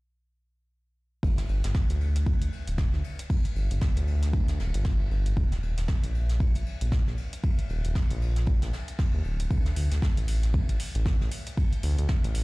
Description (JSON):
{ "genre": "deep house", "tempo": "116 BPM", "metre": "4/4", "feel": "swing 59% on 16ths", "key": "G minor", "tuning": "A4 = 439 Hz", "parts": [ { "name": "round analog bass", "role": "bass", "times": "1.2-12.4 s", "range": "D1 to Eb2", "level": "-26 LUFS", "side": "equal", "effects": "tube saturation, sidechain pumping" }, { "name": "electronic kick drum", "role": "drums", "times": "1.2-12.2 s", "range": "none", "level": "-25 LUFS", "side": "equal", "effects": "studio reverb" }, { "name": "soft brush drum kit", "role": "drums", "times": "1.2-12.4 s", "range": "ride cymbal, snare drum", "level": "-43 LUFS", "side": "left 2 dB", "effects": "sidechain pumping on cymbals, high-pass filter on cymbals, studio reverb, high-pass filter on snare, high-pass filter on room" }, { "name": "electronic hi-hat", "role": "drums", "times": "1.4-12.4 s", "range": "none", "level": "-42 LUFS", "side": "equal", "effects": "studio reverb" } ], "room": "little or no reverb", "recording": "played on a big sound system in a bare room, large studio reverb", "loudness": "-24 LUFS", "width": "side -23 dB against mid", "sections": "1.2-12.4 A section", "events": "none", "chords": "none", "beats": "| 1.23 1.75 2.27 2.78 | 3.30 3.82 4.33 4.85 | 5.37 5.88 6.40 6.92 | 7.44 7.95 8.47 8.99 | 9.51 10.02 10.54 11.06 | 11.57 12.09" }